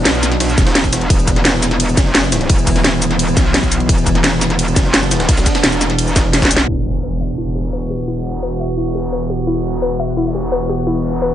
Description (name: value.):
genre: dark technical drum and bass.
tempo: 172 BPM.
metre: 4/4.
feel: straight.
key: unclear.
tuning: A4 = 440 Hz.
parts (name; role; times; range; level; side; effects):
metallic inharmonic drone; sustained chords; 0.0-11.3 s; E3 to F#4; -21 LUFS; equal; chorus, built-in reverb, sidechain pumping.
metallic wobble bass; bass; 0.0-11.3 s; E1 to B1; -18 LUFS; equal; distortion, chorus, overdrive.
drum and bass drum kit; drums; 0.1-11.1 s; hi-hat, ride cymbal, shaker, snare drum; -16 LUFS; equal; low-pass filter on hats, low-pass filter on cymbals, low-pass filter on perc, low-pass filter on snare, low-pass filter on room.
jungle sampler-style drum kit; drums; 0.1-6.7 s; hi-hat, ride cymbal, snare drum; -25 LUFS; equal; none.
electronic kick drum; drums; 0.6-6.5 s; none; -16 LUFS; equal; none.
warbly dusty pluck; arpeggios; 6.7-11.3 s; E4 to E5; -22 LUFS; left 3 dB; chorus, sidechain pumping, dub echo.
impact; sound effects; 6.7-8.1 s; none; -23 LUFS; equal; none.
room: light reverb, digital ambience.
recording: low-pass filter, nothing above 10.3 kHz.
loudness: -13 LUFS.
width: side -11 dB against mid.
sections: 0.0-6.7 A section; 6.7-11.3 B section.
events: drop 0.0-6.7; drum fill 6.3-6.7; band accent 6.6; impact 6.7-8.1; filter sweep 6.7-11.3.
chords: 0.0 E5.